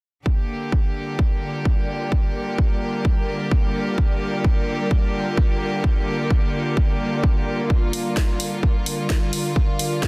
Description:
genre	bass house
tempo	129 BPM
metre	4/4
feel	swing 55% on 16ths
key	G minor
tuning	A4 = 440 Hz
part	bright chamber string section	sustained chords	0.3-10.1 s	D3 to G4	-29 LUFS	equal	sidechain pumping
part	electronic kick drum	drums	0.3-10.1 s	none	-22 LUFS	equal	none
part	ethereal airy pad	texture	1.1-10.1 s	G3 to D5	-31 LUFS	equal	ensemble chorus, built-in reverb, sidechain pumping
part	house drum kit	drums	7.9-10.1 s	hi-hat, snare drum	-30 LUFS	equal	none
room	little or no reverb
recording	dense, heavily limited modern master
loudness	-22 LUFS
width	mono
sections	0.3-10.1 A section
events	none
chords	0.3 Gm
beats	| 0.26 0.72 1.19 1.66 | 2.12 2.58 3.05 3.52 | 3.98 4.45 4.91 5.38 | 5.84 6.31 6.77 7.24 | 7.70 8.17 8.63 9.10 | 9.56 10.03

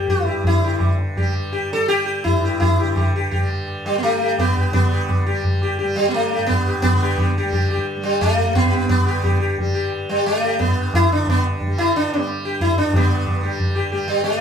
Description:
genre	indian classical, Hindustani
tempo	165-184 BPM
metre	3/4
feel	straight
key	G raga bhupali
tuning	A4 = 442 Hz
part	sitar	melody	0.0-14.4 s	G3 to A4	-20 LUFS	equal	none
part	tanpura	drone	0.0-14.4 s	G2 to G3	-27 LUFS	equal	none
part	tabla	percussion	0.1-14.4 s	none	-20 LUFS	equal	none
room	moderate studio reverb, RT60 0.6 s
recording	band playing live in one room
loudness	-17 LUFS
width	side -7 dB against mid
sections	0.0-4.7 A section; 4.7-12.9 B section; 12.9-14.4 B section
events	speeding up 0.0-14.4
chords	none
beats	0.08 | 0.45 0.81 1.17 | 1.53 1.89 2.25 | 2.60 2.96 3.32 | 3.67 4.03 4.38 | 4.73 5.08 5.44 | 5.79 6.13 6.48 | 6.83 7.18 7.52 | 7.87 8.21 8.55 | 8.89 9.24 9.58 | 9.92 10.25 10.59 | 10.93 11.26 11.60 | 11.93 12.27 12.60 | 12.93 13.26 13.59 | 13.92 14.24

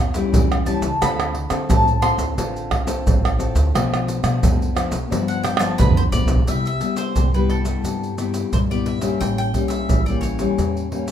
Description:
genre	samba and choro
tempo	88 BPM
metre	4/4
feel	straight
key	C major from 6.5 s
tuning	A4 = 439 Hz
part	nylon-string guitar	accompaniment	0.0-11.1 s	G2 to A4	-24 LUFS	left 5 dB	none
part	upright bass	bass	0.0-11.1 s	G1 to D3	-24 LUFS	equal	none
part	maracas, pandeiro, surdo and tamborim	percussion	0.1-11.1 s	none	-20 LUFS	right 1 dB	none
part	bowl-back mandolin	melody	0.7-10.9 s	A4 to C6	-25 LUFS	equal	none
room	moderate studio reverb, RT60 1.0 s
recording	minimal, uncompressed stereo recording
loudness	-17 LUFS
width	side -9 dB against mid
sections	0.0-6.5 A section; 6.5-11.1 B section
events	mandolin solo 0.0-6.5; drum fill 5.5-6.5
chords	0.0 A7; 1.0 Dm7; 3.7 Bm7b5; 5.1 G7; 6.5 Cmaj7; 9.2 A7b9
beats	0.33 | 1.01 1.70 2.38 3.06 | 3.75 4.43 5.11 5.79 | 6.48 7.16 7.84 8.53 | 9.21 9.90 10.58

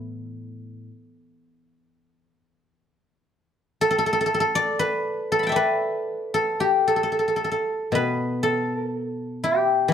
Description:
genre	chinese traditional, Chinese solo plucked strings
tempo	54-63 BPM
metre	4/4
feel	rubato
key	A shang mode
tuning	A4 = 440 Hz
part	guzheng	solo	0.0-9.9 s	A2 to B5	-21 LUFS	left 1 dB	none
room	light reverb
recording	close, detailed microphones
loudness	-21 LUFS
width	side -8 dB against mid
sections	0.0-7.9 A section; 7.9-9.9 B section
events	none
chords	none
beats	0.89 1.86 2.84 | 3.81 4.79 5.81 6.88 | 7.93 8.93 9.91

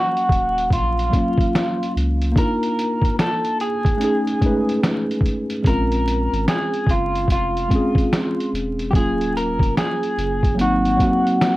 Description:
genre	lo-fi hip hop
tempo	73 BPM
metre	4/4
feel	swing 63% on 16ths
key	unclear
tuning	A4 = 439 Hz
part	electric guitar through a small old amp	melody	0.0-11.6 s	F4 to Bb4	-22 LUFS	right 1 dB	harmonic tremolo
part	mellow tine electric piano	accompaniment	0.0-11.6 s	Gb3 to F5	-22 LUFS	equal	medium stereo tremolo
part	lo-fi sampler-style drum kit	drums	0.2-11.6 s	hi-hat, kick drum, snare drum	-21 LUFS	equal	none
part	soft dub sub bass	bass	0.3-11.0 s	Eb1 to Db2	-24 LUFS	equal	transformer saturation
room	moderate small room reverb, RT60 0.5 s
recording	worn, warbling old tape, cassette tape, vinyl crackle, warbly pitch drift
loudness	-17 LUFS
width	side -18 dB against mid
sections	0.0-11.6 A section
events	none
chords	0.0 Ebm9; 2.4 Bbadd11; 4.0 Cb13/Ab; 5.6 Bbm9; 8.9 Ebm7; 10.6 Ab9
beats	0.71 1.54 | 2.36 3.18 4.00 4.82 | 5.65 6.47 7.29 8.11 | 8.93 9.76 10.58 11.40

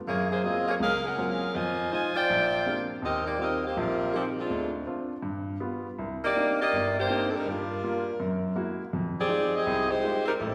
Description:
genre	jazz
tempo	163 BPM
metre	4/4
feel	swing 64% on 8ths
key	unclear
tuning	A4 = 440 Hz
part	clear saxophone section	melody	0.1-10.5 s	F3 to Ab5	-29 LUFS	equal	none
part	clear baby grand piano	accompaniment	0.1-10.5 s	G1 to G4	-34 LUFS	equal	none
room	wet recital hall reverb, RT60 1.7 s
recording	recorded in a church or concert hall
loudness	-28 LUFS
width	mono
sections	0.0-6.0 A section; 6.0-10.5 B section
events	none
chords	0.1 Gbmaj9#11; 1.5 Fm7; 2.3 Bb13; 3.0 Eb69; 4.5 Dm7b5; 5.2 G7; 6.0 Cm9; 7.5 Gm7; 8.2 Gb9; 8.9 Fm9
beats	| 0.07 0.44 0.81 1.18 | 1.55 1.92 2.29 2.66 | 3.02 3.39 3.76 4.13 | 4.50 4.87 5.24 5.61 | 5.98 6.35 6.72 7.08 | 7.45 7.82 8.19 8.56 | 8.93 9.30 9.67 10.04 | 10.40

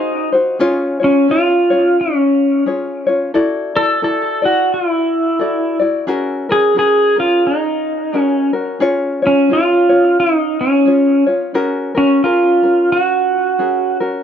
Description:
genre	Hawaiian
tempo	88 BPM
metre	4/4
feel	swing 60% on 8ths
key	F# major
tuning	A4 = 441 Hz
part	pedal steel guitar	melody	0.0-14.0 s	C#4 to A4	-13 LUFS	equal	tape echo
part	tenor ukulele	accompaniment	0.0-14.2 s	C#4 to D5	-18 LUFS	left 2 dB	none
room	moderate studio reverb, RT60 0.6 s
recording	dark, warm production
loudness	-12 LUFS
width	side -8 dB against mid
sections	0.0-14.2 A section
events	none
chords	0.0 G#7; 0.6 C#; 3.3 Dadd9; 6.1 F#add9; 8.8 C#; 11.5 F#add9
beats	| 0.60 1.28 1.97 2.65 | 3.33 4.02 4.70 5.38 | 6.07 6.75 7.44 8.12 | 8.80 9.49 10.17 10.85 | 11.54 12.22 12.90 13.58

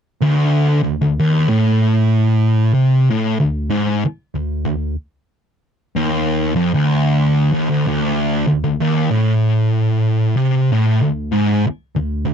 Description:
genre	metal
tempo	63 BPM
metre	4/4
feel	swing 63% on 8ths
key	unclear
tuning	A4 = 440 Hz
part	fuzz guitar	solo	0.2-12.3 s	D2 to C3	-14 LUFS	equal	distortion
room	light reverb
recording	dry, close 1970s-style studio recording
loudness	-14 LUFS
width	side -7 dB against mid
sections	0.2-7.9 A section; 7.9-12.3 B section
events	none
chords	none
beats	| 0.21 1.17 2.13 3.09 | 4.05 5.00 5.96 6.91 | 7.87 8.82 9.77 10.72 | 11.67

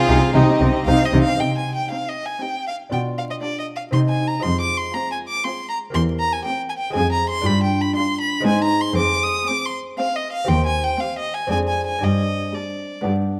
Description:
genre	classical, baroque-style concerto movement with solo episodes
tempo	118 BPM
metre	3/4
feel	straight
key	C minor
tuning	A4 = 439 Hz
part	rich studio violin section	melody	0.0-13.4 s	G4 to F5	-34 LUFS	equal	none
part	rich violin	melody	0.0-13.1 s	Eb4 to Eb6	-25 LUFS	equal	none
part	rich chamber violin section	second line	0.0-13.4 s	D4 to Ab4	-32 LUFS	equal	none
part	lute	accompaniment	0.0-13.4 s	Eb2 to C5	-28 LUFS	equal	none
part	rich chamber viola section	accompaniment	0.0-13.4 s	G3 to Eb4	-31 LUFS	equal	none
part	rich chamber double bass section	bass	0.1-1.2 s	C2	-23 LUFS	equal	none
part	warm chamber cello section	bass	0.1-13.4 s	Eb2 to C3	-24 LUFS	equal	none
room	moderate recital hall reverb, RT60 1.8 s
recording	vinyl crackle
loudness	-21 LUFS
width	mono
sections	0.0-1.4 A section; 1.4-13.4 B section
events	none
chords	0.0 Cm; 2.9 G7/B; 3.9 Cm; 4.4 Fm; 5.9 C7/E; 7.0 Fm; 7.5 G5; 8.5 Ab; 9.0 Fm; 10.5 Cm/Eb; 11.5 Dm7b5/F; 12.0 Gsus4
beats	0.35 0.88 | 1.40 1.91 2.42 | 2.92 3.42 3.93 | 4.44 4.94 5.44 | 5.95 6.45 6.95 | 7.46 7.96 8.47 | 8.97 9.48 9.99 | 10.50 11.01 11.52 | 12.03 12.55 13.06

